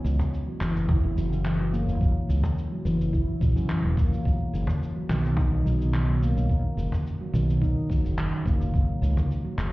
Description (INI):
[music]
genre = organic downtempo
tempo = 107 BPM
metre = 4/4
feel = straight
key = unclear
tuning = A4 = 440 Hz
[part]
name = fretless electric bass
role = bass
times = 0.0-9.7 s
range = E1 to F#2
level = -25 LUFS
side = equal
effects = sidechain pumping
[part]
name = electronic shaker and handclaps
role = drums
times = 0.1-9.7 s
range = none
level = -40 LUFS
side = equal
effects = none
[part]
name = cajon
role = percussion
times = 0.2-9.3 s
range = none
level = -28 LUFS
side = equal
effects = none
[part]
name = handpan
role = arpeggios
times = 0.5-9.7 s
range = C#3 to E4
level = -28 LUFS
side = equal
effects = low-pass filter, tape echo
[part]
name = electronic kick drum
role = drums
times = 0.9-8.9 s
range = none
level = -24 LUFS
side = equal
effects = none
[sound]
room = light reverb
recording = heard muffled through a wall, club reverb, EQ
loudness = -23 LUFS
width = side -19 dB against mid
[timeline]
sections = 0.0-9.7 A section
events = filter sweep on handpan 0.0-9.7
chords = 0.0 N.C.; 4.3 B; 8.7 F#5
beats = 0.33 0.89 1.45 | 2.02 2.58 3.14 3.70 | 4.26 4.82 5.38 5.94 | 6.50 7.06 7.62 8.18 | 8.74 9.30